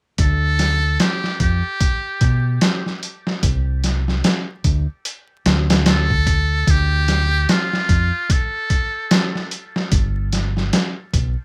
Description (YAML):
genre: trip hop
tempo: 74 BPM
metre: 4/4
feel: swing 59% on 16ths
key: D dorian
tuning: A4 = 440 Hz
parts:
  - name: trumpet with metal mute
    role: melody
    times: 0.2-9.5 s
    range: F4 to A4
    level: -25 LUFS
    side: equal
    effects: dub echo
  - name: deep dub fingered electric bass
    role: bass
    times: 0.2-11.3 s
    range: G1 to B2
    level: -21 LUFS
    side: equal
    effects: none
  - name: trip hop sampler-style drum kit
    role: drums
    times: 0.2-11.4 s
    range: hi-hat, kick drum, snare drum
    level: -20 LUFS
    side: equal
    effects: none
room: light reverb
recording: rough home demo mix, vinyl crackle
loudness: -19 LUFS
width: mono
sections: 0.2-11.4 A section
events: none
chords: 0.2 D5; 3.4 Csus2; 6.7 Dm; 9.9 G